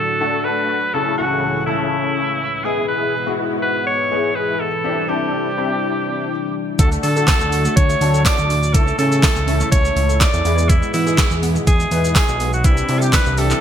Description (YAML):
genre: dance-pop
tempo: 123 BPM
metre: 4/4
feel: straight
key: A major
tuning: A4 = 440 Hz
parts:
  - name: bright alto saxophone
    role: melody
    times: 0.0-13.6 s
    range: E4 to D5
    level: -20 LUFS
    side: equal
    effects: digital delay
  - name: warm analog pad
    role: sustained chords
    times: 0.0-13.6 s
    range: C#2 to F#4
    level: -27 LUFS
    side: left 1 dB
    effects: chorus, sidechain pumping
  - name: clear concert grand piano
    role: accompaniment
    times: 0.2-13.6 s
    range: C#3 to G#5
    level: -23 LUFS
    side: left 4 dB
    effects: ensemble chorus, sidechain pumping
  - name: glassy wavetable pluck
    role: arpeggios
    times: 6.8-13.6 s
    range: E3 to F#5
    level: -28 LUFS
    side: right 3 dB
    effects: chorus, sidechain pumping, digital delay
  - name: fat analog bass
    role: bass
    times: 6.8-13.5 s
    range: B1 to E3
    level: -19 LUFS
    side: equal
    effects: sidechain pumping
  - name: pop drum kit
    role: drums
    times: 6.8-13.6 s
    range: handclaps, hi-hat, kick drum, shaker, snare drum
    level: -17 LUFS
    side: equal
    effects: overdrive, gated reverb
  - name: tambourine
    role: percussion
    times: 7.3-13.3 s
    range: none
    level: -31 LUFS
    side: right 14 dB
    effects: none
room: light reverb, digital ambience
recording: bright 1980s-style digital production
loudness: -15 LUFS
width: side -9 dB against mid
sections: 0.0-13.6 A section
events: none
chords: 0.0 D; 0.9 A/C#; 2.6 E; 4.8 Cadd9; 6.8 D; 8.7 A; 10.5 E; 12.6 Cadd9